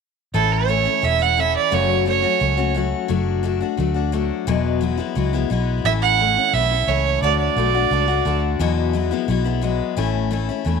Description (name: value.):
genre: honky-tonk and classic country.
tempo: 175 BPM.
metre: 4/4.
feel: straight.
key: A major.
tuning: A4 = 436 Hz.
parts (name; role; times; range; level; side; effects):
clear fiddle; melody; 0.3-2.7, 5.9-8.4 s; A4 to F#5; -19 LUFS; right 13 dB; none.
picked steel-string acoustic guitar; accompaniment; 0.3-10.8 s; E2 to F#4; -22 LUFS; left 11 dB; none.
vintage muted fingered electric bass; bass; 0.3-10.8 s; E1 to E2; -22 LUFS; right 1 dB; none.
room: light reverb, small room ambience.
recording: 1960s-style stereo with parts hard left and right.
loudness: -17 LUFS.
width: side -5 dB against mid.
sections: 0.3-10.8 A section.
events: none.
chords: 0.3 A; 1.7 F#m; 3.1 D/F#; 4.5 Eadd9; 5.8 A; 7.2 D; 8.6 Eadd9; 10.0 A.